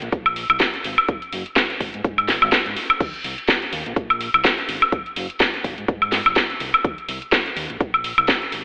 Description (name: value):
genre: filtered disco house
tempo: 125 BPM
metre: 4/4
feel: swing 56% on 16ths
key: Eb dorian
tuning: A4 = 438 Hz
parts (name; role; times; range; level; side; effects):
- fingered electric bass; bass; 0.0-8.6 s; Gb1 to Ab2; -33 LUFS; equal; sidechain pumping
- house drum kit; drums; 0.0-8.6 s; crash cymbal, hi-hat, snare drum, woodblock; -18 LUFS; equal; sidechain pumping on hats, sidechain pumping on perc, sidechain pumping on cymbals
- electronic kick drum; drums; 0.1-8.4 s; none; -23 LUFS; equal; none
room: moderate lush hall reverb, RT60 1.8 s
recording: dreamy mix soaked in reverb, telephone sound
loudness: -18 LUFS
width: side -30 dB against mid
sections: 0.0-8.6 A section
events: none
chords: none